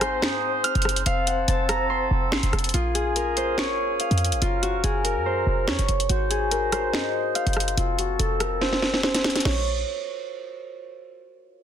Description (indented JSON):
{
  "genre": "hip hop, drill",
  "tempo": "143 BPM",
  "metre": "4/4",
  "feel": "half-time",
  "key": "Bb minor",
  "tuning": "A4 = 439 Hz",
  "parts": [
    { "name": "Celtic harp", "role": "melody", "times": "0.0-9.6 s", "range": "F4 to F6", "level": "-26 LUFS", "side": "equal", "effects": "low-pass filter, ping-pong delay" },
    { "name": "soft octave-layered synth lead", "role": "second line", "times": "0.0-2.7 s", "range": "C5", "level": "-30 LUFS", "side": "left 6 dB", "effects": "chorus, tremolo, ping-pong delay" },
    { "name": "mellow woodwind section", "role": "sustained chords", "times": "0.0-9.6 s", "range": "Bb2 to Db5", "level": "-31 LUFS", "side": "right 1 dB", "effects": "low-pass filter" },
    { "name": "short 808-style bass", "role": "bass", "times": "0.0-9.8 s", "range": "F1 to Ab2", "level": "-26 LUFS", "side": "equal", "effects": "none" },
    { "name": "drill drum kit", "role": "drums", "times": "0.0-9.6 s", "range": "crash cymbal, finger snaps, hi-hat, rim click, snare drum", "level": "-26 LUFS", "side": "equal", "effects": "soft clipping on snare" }
  ],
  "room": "light reverb, digital ambience",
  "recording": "dense, heavily limited modern master",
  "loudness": "-21 LUFS",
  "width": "side -9 dB against mid",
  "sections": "0.0-2.7 A section; 2.7-9.5 B section; 9.5-11.1 C section",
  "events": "filter sweep 2.7-9.5; drum fill 8.6-9.5",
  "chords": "0.0 Ab; 1.1 F; 2.7 Bbm7; 4.4 Gb; 6.1 Ab; 7.8 F; 9.5 Bbm7"
}